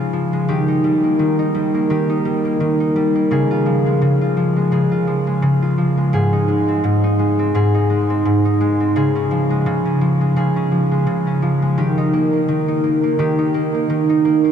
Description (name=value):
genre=folktronica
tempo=85 BPM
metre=4/4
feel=swing 56% on 16ths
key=Db lydian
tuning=A4 = 438 Hz
part: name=concert harp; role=solo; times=0.0-14.5 s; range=Ab2 to Ab4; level=-15 LUFS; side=equal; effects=vintage 12-bit sampler grit, ping-pong delay
room=wet huge ambient reverb, RT60 7.8 s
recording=dreamy mix soaked in reverb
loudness=-15 LUFS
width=side -8 dB against mid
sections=0.0-14.5 A section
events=none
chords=0.5 Eb; 3.3 Db; 6.1 Ab; 9.0 Db; 11.8 Eb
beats=| 0.49 1.20 1.90 2.61 | 3.31 4.02 4.72 5.43 | 6.14 6.84 7.55 8.25 | 8.96 9.67 10.37 11.08 | 11.78 12.49 13.20 13.90